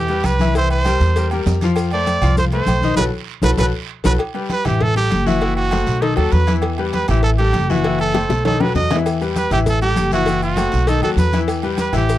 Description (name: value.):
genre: latin, salsa.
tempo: 197 BPM.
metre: 4/4.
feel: straight.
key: E harmonic minor.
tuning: A4 = 437 Hz.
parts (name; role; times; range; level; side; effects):
bright trumpet; melody; 0.0-12.2 s; F#4 to D#5; -20 LUFS; right 3 dB; none.
bright grand piano; accompaniment; 0.0-12.2 s; D#3 to F5; -21 LUFS; left 6 dB; none.
upright bass; bass; 0.0-12.2 s; F#1 to F2; -19 LUFS; right 1 dB; none.
agogo bells and timbales; percussion; 0.1-12.1 s; none; -29 LUFS; right 6 dB; none.
congas; percussion; 0.1-12.2 s; none; -24 LUFS; left 1 dB; none.
maracas; percussion; 0.1-4.1, 9.1-12.2 s; none; -39 LUFS; left 6 dB; none.
cowbell and bongos; percussion; 0.2-12.2 s; none; -26 LUFS; left 4 dB; none.
guiro; percussion; 0.2-12.2 s; none; -36 LUFS; right 16 dB; none.
room: light reverb.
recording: dry, close 1970s-style studio recording.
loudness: -15 LUFS.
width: side -14 dB against mid.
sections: 0.0-4.2 A section; 4.2-12.2 B section.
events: band accent 3.0-4.2; drum fill 3.3-4.2, 8.1-9.1.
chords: 0.0 Em; 0.6 C7; 1.8 F; 3.0 B5; 4.2 Em; 4.8 A5; 5.4 F#m7b5; 6.0 B7; 6.6 Em; 7.2 A5; 7.8 F#m7b5; 8.5 B7; 9.1 Em; 9.7 A5; 10.3 F#m7b5; 10.9 B7; 11.5 Em.